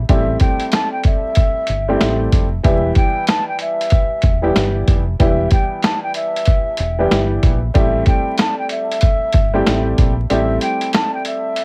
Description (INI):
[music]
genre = hip hop, boom-bap hip-hop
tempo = 94 BPM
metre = 4/4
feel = swing 61% on 16ths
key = unclear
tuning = A4 = 440 Hz
[part]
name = deep dub fingered electric bass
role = bass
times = 0.0-10.6 s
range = E1 to A#1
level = -23 LUFS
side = equal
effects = none
[part]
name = mellow silver concert flute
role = melody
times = 0.1-11.6 s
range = E5 to A5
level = -24 LUFS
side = equal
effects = high-pass filter, low-pass filter, cassette tape, tape echo
[part]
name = warm upright piano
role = accompaniment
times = 0.1-11.6 s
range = E3 to G4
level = -23 LUFS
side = equal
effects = cassette tape, high-pass filter, low-pass filter
[part]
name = boom bap sampler-style drum kit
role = drums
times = 0.1-11.6 s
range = hi-hat, kick drum, snare drum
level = -18 LUFS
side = equal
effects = cassette tape
[sound]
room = little or no reverb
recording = home recording on cassette, vinyl crackle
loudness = -17 LUFS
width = mono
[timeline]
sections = 0.0-11.6 A section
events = break 10.3-11.6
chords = 0.0 Am7; 2.6 Em; 7.8 Am7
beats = | 0.09 0.73 1.37 2.01 | 2.65 3.28 3.92 4.56 | 5.20 5.84 6.48 7.11 | 7.75 8.39 9.03 9.67 | 10.31 10.94 11.58